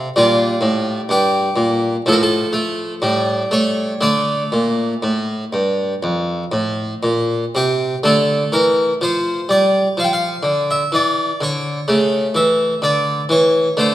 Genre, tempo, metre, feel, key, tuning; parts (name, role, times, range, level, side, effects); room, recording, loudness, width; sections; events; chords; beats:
classical, baroque-style suite movement for harpsichord; 62 BPM; 4/4; uneven beats, rubato; D minor; A4 = 435 Hz
harpsichord; solo; 0.0-13.9 s; F2 to G5; -15 LUFS; equal
moderate recital hall reverb, RT60 1.6 s; minimal, uncompressed stereo recording; -15 LUFS; side -13 dB against mid
0.0-8.0 A section; 8.0-13.9 B section
0.2 Gm; 2.1 F/A; 3.0 A7; 4.0 D5; 8.0 Dm; 11.9 A/C#
| 0.16 1.10 2.06 3.03 | 4.02 5.03 6.03 7.03 | 8.03 8.99 9.94 10.90 | 11.87 12.82 13.76